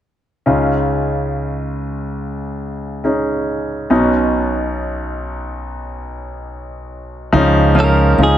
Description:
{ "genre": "pop ballad", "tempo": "70 BPM", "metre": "4/4", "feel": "straight", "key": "unclear", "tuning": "A4 = 440 Hz", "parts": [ { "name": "clear concert grand piano", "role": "accompaniment", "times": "0.5-8.4 s", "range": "Cb2 to Ab4", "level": "-17 LUFS", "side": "equal", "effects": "none" }, { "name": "modern bright fingered electric bass", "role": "bass", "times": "7.3-8.4 s", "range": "Db2", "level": "-14 LUFS", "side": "equal", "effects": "none" }, { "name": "direct-recorded clean electric guitar", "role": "melody", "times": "7.8-8.4 s", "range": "Ab4 to Bb4", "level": "-16 LUFS", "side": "right 3 dB", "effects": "none" } ], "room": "moderate recital hall reverb, RT60 1.5 s, studio reverb", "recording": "none", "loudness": "-15 LUFS", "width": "side -11 dB against mid", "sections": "0.5-7.3 A section; 7.3-8.4 B section", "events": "none", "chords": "0.5 Dbadd9; 3.9 Cbadd9; 7.3 Dbadd9" }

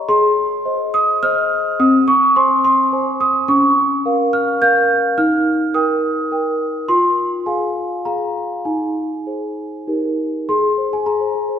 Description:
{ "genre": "classical, lullaby for celesta", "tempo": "105 BPM", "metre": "3/4", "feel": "rubato", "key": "Ab major", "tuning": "A4 = 444 Hz", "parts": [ { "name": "large celesta", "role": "solo", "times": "0.0-11.6 s", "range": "C4 to G6", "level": "-14 LUFS", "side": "equal", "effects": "none" } ], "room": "wet concert hall reverb, RT60 2.4 s", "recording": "heard from further back in the room", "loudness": "-14 LUFS", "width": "side -8 dB against mid", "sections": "0.0-10.5 A section; 10.5-11.6 B section", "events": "none", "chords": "0.1 Ab; 1.8 Ab/C; 3.5 Bbm/Db; 5.2 Eb; 6.9 Fm; 8.6 Ab/Eb; 9.9 Eb; 10.5 Ab" }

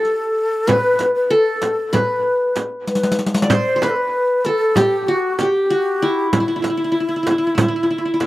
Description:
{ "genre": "Turkish makam ensemble", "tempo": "191 BPM (eighths)", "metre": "9/8", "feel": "straight", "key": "E makam nihavent", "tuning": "A4 = 440 Hz", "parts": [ { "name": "qanun", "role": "melody", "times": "0.0-8.3 s", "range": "E4 to D5", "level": "-20 LUFS", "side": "equal", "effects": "slapback echo" }, { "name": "breathy mellow ney", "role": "second line", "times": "0.0-8.3 s", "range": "E4 to C5", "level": "-19 LUFS", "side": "left 1 dB", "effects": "slapback echo" }, { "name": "riq", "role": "percussion", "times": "0.0-8.3 s", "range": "none", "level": "-22 LUFS", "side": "left 1 dB", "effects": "none" }, { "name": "frame drum", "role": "percussion", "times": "0.7-8.3 s", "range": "none", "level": "-22 LUFS", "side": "right 3 dB", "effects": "slapback echo" } ], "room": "little or no reverb", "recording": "recorded outdoors, with no room sound", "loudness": "-15 LUFS", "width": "side -16 dB against mid", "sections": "0.0-8.3 A section", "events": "drum fill 2.9-3.5", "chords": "none" }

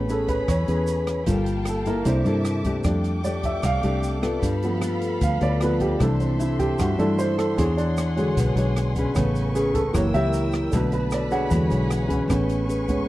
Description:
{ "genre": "bossa nova", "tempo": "152 BPM", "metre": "4/4", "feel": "straight", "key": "A major", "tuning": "A4 = 439 Hz", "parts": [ { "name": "nylon-string guitar", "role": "accompaniment", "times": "0.0-13.1 s", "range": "B2 to C#5", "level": "-27 LUFS", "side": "left 2 dB", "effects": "none" }, { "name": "warm baby grand piano", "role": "accompaniment", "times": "0.0-13.1 s", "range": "C#3 to F#5", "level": "-25 LUFS", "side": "right 2 dB", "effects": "none" }, { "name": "rich studio violin section", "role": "sustained chords", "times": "0.0-13.1 s", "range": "G#4 to E6", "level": "-34 LUFS", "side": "left 1 dB", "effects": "none" }, { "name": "fingered electric bass", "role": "bass", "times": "0.0-13.0 s", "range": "F#1 to G2", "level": "-25 LUFS", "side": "equal", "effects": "none" }, { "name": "open jazz drum kit", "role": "drums", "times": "0.1-13.0 s", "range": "hi-hat, kick drum, rim click", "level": "-30 LUFS", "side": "equal", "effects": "none" }, { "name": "egg shaker", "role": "percussion", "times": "0.1-13.1 s", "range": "none", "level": "-46 LUFS", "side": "right 3 dB", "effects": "none" } ], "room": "little or no reverb", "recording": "dry, close 1970s-style studio recording", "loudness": "-20 LUFS", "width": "side -16 dB against mid", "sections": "0.0-12.3 A section", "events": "grand piano solo 0.0-13.1", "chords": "0.0 Amaj9; 1.3 Gm9; 2.1 C13; 2.9 F69; 4.4 G9; 6.0 C69; 7.6 E13; 9.2 Amaj9; 9.9 F#7b9; 10.7 Bm7; 11.5 E13; 12.3 Amaj9" }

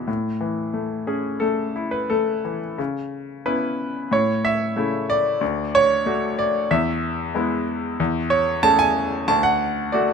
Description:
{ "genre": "classical, lyrical solo piano", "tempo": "92 BPM", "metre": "4/4", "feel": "rubato", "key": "A major", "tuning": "A4 = 440 Hz", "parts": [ { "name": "bright grand piano", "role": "solo", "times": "0.0-10.1 s", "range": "D2 to A5", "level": "-20 LUFS", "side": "equal", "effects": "none" } ], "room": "light reverb", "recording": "minimal, uncompressed stereo recording", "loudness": "-19 LUFS", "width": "side -6 dB against mid", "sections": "0.0-2.8 A section; 2.8-10.1 B section", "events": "none", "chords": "0.1 A; 2.8 C#m7; 4.1 A; 5.4 D; 6.7 E; 8.0 Amaj7/E; 9.3 D" }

